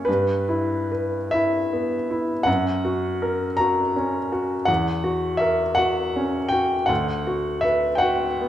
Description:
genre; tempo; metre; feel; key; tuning
classical, romantic nocturne for solo piano; 46-56 BPM (dotted quarters); 12/8; rubato; unclear; A4 = 440 Hz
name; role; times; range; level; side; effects
clear baby grand piano; solo; 0.0-8.5 s; D2 to A#5; -20 LUFS; equal; none
room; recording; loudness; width
moderate recital hall reverb, RT60 1.4 s; none; -20 LUFS; side -11 dB against mid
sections
0.0-8.5 A section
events
none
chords
0.1 Em/G; 2.5 F#; 4.7 F#7/E; 6.9 Bm/D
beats
| 0.07 1.33 2.47 3.59 | 4.69 5.78 6.90 8.03

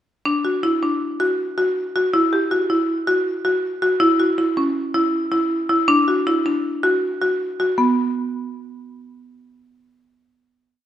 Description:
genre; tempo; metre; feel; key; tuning
contemporary instrumental, chamber music in an uneven meter; 160 BPM; 5/4; straight; unclear; A4 = 441 Hz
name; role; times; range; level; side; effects
buzzing marimba with hard mallets; solo; 0.3-8.0 s; B3 to G4; -18 LUFS; equal; none
room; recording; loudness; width
wet recital hall reverb, RT60 1.8 s; none; -17 LUFS; side -11 dB against mid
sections
0.3-7.8 A section; 7.8-9.7 final note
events
none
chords
none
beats
| 0.25 0.63 1.01 1.39 1.76 | 2.13 2.51 2.88 3.26 3.63 | 4.00 4.38 4.75 5.13 5.50 | 5.88 6.26 6.64 7.02 7.40 | 7.79

